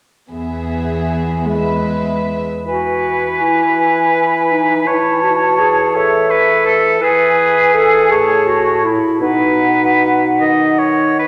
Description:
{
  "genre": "classical, slow romantic movement for symphony orchestra",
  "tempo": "47-57 BPM (dotted quarters)",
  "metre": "6/8",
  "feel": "rubato",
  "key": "E major",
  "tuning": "A4 = 440 Hz",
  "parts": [
    { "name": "dark studio violin section", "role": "melody", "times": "0.3-2.4 s", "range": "E5", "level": "-31 LUFS", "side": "equal", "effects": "none" },
    { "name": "dark chamber violin section", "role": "second line", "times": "0.3-2.4 s", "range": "G#4 to B4", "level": "-26 LUFS", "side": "equal", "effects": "none" },
    { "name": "warm studio viola section", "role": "accompaniment", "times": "0.3-2.4 s", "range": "G#3 to B3", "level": "-25 LUFS", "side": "equal", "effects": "none" },
    { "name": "warm studio cello section", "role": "bass", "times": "0.3-2.4 s", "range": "E2", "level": "-25 LUFS", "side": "equal", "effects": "none" },
    { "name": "bright silver concert flute", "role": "second line", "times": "2.7-11.2 s", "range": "E5 to A5", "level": "-20 LUFS", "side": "equal", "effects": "none" },
    { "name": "clear oboe", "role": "second line", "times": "2.7-11.3 s", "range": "G#4 to D#5", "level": "-18 LUFS", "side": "equal", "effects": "none" },
    { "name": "mellow clarinet", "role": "second line", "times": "2.7-11.1 s", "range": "D#4 to B4", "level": "-18 LUFS", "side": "equal", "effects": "none" },
    { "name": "dark bassoon", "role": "accompaniment", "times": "2.7-11.2 s", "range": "A2 to E3", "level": "-22 LUFS", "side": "equal", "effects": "none" }
  ],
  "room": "wet concert hall reverb, RT60 2.3 s",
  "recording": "none",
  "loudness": "-14 LUFS",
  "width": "mono",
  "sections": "0.3-2.7 A section; 2.7-11.3 B section",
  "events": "none",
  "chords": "0.3 E; 8.1 A; 9.2 B"
}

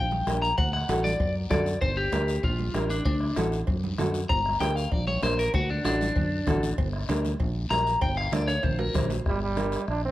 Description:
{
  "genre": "latin, cumbia",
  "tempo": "194 BPM",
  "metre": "4/4",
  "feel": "straight",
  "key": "G harmonic minor",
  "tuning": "A4 = 441 Hz",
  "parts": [
    { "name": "electric guitar at the edge of break-up", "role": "melody", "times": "0.0-9.1 s", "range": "D4 to Bb5", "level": "-28 LUFS", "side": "left 2 dB", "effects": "spring reverb" },
    { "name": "fingered electric bass", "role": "bass", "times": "0.0-10.1 s", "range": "G1 to F#2", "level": "-29 LUFS", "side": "equal", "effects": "none" },
    { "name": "congas", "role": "percussion", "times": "0.1-10.0 s", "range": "none", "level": "-35 LUFS", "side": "right 4 dB", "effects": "none" },
    { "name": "nylon-string guitar", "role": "accompaniment", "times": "0.3-9.8 s", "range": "D4 to C5", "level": "-31 LUFS", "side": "equal", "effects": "none" },
    { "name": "bombo", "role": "percussion", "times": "0.3-10.0 s", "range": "none", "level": "-31 LUFS", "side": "left 1 dB", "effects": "none" },
    { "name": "cowbell and timbales", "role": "percussion", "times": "0.3-9.2 s", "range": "none", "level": "-39 LUFS", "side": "right 5 dB", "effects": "none" },
    { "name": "guiro", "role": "percussion", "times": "0.3-10.1 s", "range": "none", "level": "-44 LUFS", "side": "left 6 dB", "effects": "none" },
    { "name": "brilliant trombone", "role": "second line", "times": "9.3-10.1 s", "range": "G3 to D4", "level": "-29 LUFS", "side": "right 4 dB", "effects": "none" }
  ],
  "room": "light reverb",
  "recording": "dark, warm production",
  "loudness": "-24 LUFS",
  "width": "side -15 dB against mid",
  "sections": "0.0-9.3 A section",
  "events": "clean electric guitar solo 0.0-9.3; drum fill 8.3-9.3",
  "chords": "0.0 Gm; 0.6 D; 1.8 Gm; 3.1 D; 4.3 Gm; 5.5 D; 6.8 Gm"
}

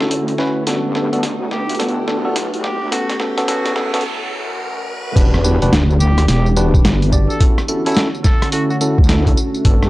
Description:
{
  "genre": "glitch hop",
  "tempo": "107 BPM",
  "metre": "4/4",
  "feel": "swing 63% on 16ths",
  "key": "E dorian",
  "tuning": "A4 = 440 Hz",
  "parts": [
    { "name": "warbly tape-like pad", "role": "sustained chords", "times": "0.0-9.9 s", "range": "D3 to G4", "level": "-24 LUFS", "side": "equal", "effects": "chorus, built-in reverb, sidechain pumping" },
    { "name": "tine electric piano", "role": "stabs", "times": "0.0-9.9 s", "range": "B3 to D5", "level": "-20 LUFS", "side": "equal", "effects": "sidechain pumping, tape echo" },
    { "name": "wobble bass", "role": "bass", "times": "0.0-9.9 s", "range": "E1 to G2", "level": "-17 LUFS", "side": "equal", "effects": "chorus, overdrive, high-pass filter" },
    { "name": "boom bap sampler-style drum kit", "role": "drums", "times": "0.0-9.9 s", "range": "crash cymbal, hi-hat, rim click, snare drum, tambourine", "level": "-21 LUFS", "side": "equal", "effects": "high-pass filter on hats, high-pass filter on snare, high-pass filter on perc, high-pass filter on cymbals, high-pass filter on room" },
    { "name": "riser, noise sweep and impact", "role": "sound effects", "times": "0.0-7.4 s", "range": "none", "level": "-28 LUFS", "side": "equal", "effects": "none" },
    { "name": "warm trumpet", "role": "melody", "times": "1.5-8.8 s", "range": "E4 to A4", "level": "-27 LUFS", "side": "equal", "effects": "tape echo" },
    { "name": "electronic kick drum", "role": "drums", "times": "5.2-9.8 s", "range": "none", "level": "-13 LUFS", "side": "equal", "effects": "none" }
  ],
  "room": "light reverb, digital ambience",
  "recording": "dry, gritty hardware recording, transformer saturation, cassette tape, high-pass filter",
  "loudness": "-14 LUFS",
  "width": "side -18 dB against mid",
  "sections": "0.0-5.2 A section; 5.2-9.9 B section",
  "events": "build-up 0.0-5.2; drum fill 0.0-4.0; riser 0.0-5.2; filter sweep on tine electric piano 0.0-5.2; filter sweep 0.0-5.2; noise sweep 2.9-5.2; break 4.0-5.2; drop 5.2-9.9; impact 5.2-7.4",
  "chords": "0.0 Dmaj7; 0.7 Gmaj9; 2.9 F#m7; 5.2 Em7; 7.4 Dmaj7"
}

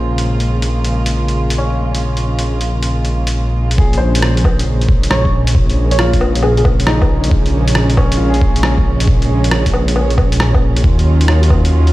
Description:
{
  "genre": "future garage",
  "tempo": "136 BPM",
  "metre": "4/4",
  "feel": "swing 66% on 16ths",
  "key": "Bb minor",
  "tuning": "A4 = 440 Hz",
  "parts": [
    { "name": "bright upright piano", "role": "accompaniment", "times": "0.0-10.9 s", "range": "C4 to C5", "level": "-25 LUFS", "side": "left 3 dB", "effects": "sidechain pumping, digital delay" },
    { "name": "dark chamber string section", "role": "sustained chords", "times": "0.0-11.9 s", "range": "Db3 to F4", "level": "-20 LUFS", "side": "right 2 dB", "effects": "sidechain pumping" },
    { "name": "dark detuned saw bass", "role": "bass", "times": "0.0-11.9 s", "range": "Bb1 to Eb2", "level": "-14 LUFS", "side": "equal", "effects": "sidechain pumping" },
    { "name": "lo-fi sampler-style drum kit", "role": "drums", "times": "0.2-11.9 s", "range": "hi-hat, rim click, woodblock", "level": "-21 LUFS", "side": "left 1 dB", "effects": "overdrive, studio reverb" },
    { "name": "electronic kick drum", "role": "drums", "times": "3.8-11.6 s", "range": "none", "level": "-14 LUFS", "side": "equal", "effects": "overdrive, studio reverb" },
    { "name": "soft struck synth lead", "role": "melody", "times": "5.1-6.6 s", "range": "Ab4 to Db5", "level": "-21 LUFS", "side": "right 1 dB", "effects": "chorus, phaser, vintage 12-bit sampler grit, ping-pong delay" }
  ],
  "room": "little or no reverb",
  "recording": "played on a big sound system in a bare room, stone room reverb",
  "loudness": "-11 LUFS",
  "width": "side -17 dB against mid",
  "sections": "0.0-3.8 A section; 3.8-11.9 B section",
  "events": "none",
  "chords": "0.0 Bbm9; 10.8 Ebm9"
}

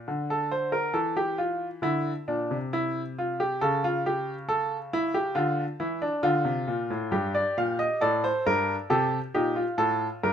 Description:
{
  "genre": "classical, baroque-style 3-part fugue for grand piano",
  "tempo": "68 BPM",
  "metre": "4/4",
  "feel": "straight",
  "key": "unclear",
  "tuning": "A4 = 440 Hz",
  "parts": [
    { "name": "clear grand piano", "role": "solo", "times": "0.0-10.3 s", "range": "G2 to F5", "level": "-25 LUFS", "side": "equal", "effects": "none" }
  ],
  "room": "light reverb",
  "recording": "minimal, uncompressed stereo recording",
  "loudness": "-25 LUFS",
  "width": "side -8 dB against mid",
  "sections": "0.0-10.3 A section",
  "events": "none",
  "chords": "0.1 Dm; 1.8 E7(b5, no3); 3.6 A/C#; 5.4 Dm; 7.1 Gm; 8.9 Am7b5"
}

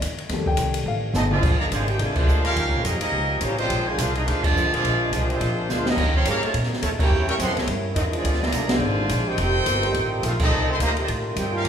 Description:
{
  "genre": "jazz, big band swing",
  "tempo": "211 BPM",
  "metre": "4/4",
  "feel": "swing 59% on 8ths",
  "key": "Bb major",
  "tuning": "A4 = 437 Hz",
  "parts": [
    { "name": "upright bass", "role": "bass", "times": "0.0-11.7 s", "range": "F1 to Bb2", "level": "-25 LUFS", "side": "equal", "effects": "none" },
    { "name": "open jazz drum kit", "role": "drums", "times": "0.0-11.7 s", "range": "crash cymbal, hi-hat, kick drum, ride cymbal, snare drum, toms", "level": "-26 LUFS", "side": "equal", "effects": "none" },
    { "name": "warm grand piano", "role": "accompaniment", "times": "0.3-1.4 s", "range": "Eb3 to A5", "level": "-28 LUFS", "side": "left 3 dB", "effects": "none" },
    { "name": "bright trumpet section", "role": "melody", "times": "1.1-11.7 s", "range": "Ab3 to C#6", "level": "-25 LUFS", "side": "equal", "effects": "none" },
    { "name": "mellow trombone section", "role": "second line", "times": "1.1-11.7 s", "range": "C3 to G4", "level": "-27 LUFS", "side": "right 2 dB", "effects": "none" },
    { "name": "muted trombone section", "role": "sustained chords", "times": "1.4-11.7 s", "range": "C3 to F4", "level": "-32 LUFS", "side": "left 1 dB", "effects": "none" }
  ],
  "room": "wet recital hall reverb, RT60 1.6 s",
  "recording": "recorded in a church or concert hall",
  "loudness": "-20 LUFS",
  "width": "side -8 dB against mid",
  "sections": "0.0-1.4 A section; 1.4-11.7 B section",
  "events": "grand piano solo 0.0-1.4; drum fill 1.1, 5.7; band accent 2.1, 4.4, 7.0, 8.7, 10.4",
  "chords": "0.3 F9; 1.4 Bb9; 2.6 Eb9; 3.7 Bb9; 6.0 Eb9; 7.1 Edim7; 8.2 Bb9; 9.4 F9"
}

